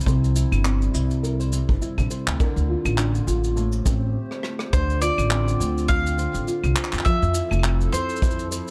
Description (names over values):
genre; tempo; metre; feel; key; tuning
folktronica; 103 BPM; 4/4; swing 56% on 16ths; D minor; A4 = 440 Hz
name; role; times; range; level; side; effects
warbly tape-like pad; sustained chords; 0.0-8.7 s; C3 to C5; -36 LUFS; equal; chorus, built-in reverb
nylon-string guitar; arpeggios; 0.0-8.7 s; A2 to C5; -31 LUFS; equal; tape echo
shaker, claves, handclaps and rim click; drums; 0.0-8.7 s; none; -32 LUFS; equal; none
upright bass; bass; 0.1-8.6 s; F1 to F2; -25 LUFS; equal; none
kick drum; drums; 0.1-8.4 s; none; -25 LUFS; equal; none
bowl-back mandolin; melody; 4.7-8.5 s; C5 to F5; -29 LUFS; equal; vintage 12-bit sampler grit, tape echo
room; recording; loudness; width
light reverb; dark, warm production; -22 LUFS; mono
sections
0.0-4.7 A section; 4.7-8.7 B section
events
break 4.1-4.7; drum fill 4.3-4.7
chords
0.1 C; 2.4 Bb; 3.6 Am7; 4.7 Dm7; 7.1 Fmaj7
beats
| 0.07 0.65 1.23 1.81 | 2.40 2.98 3.56 4.14 | 4.73 5.31 5.89 6.47 | 7.06 7.64 8.22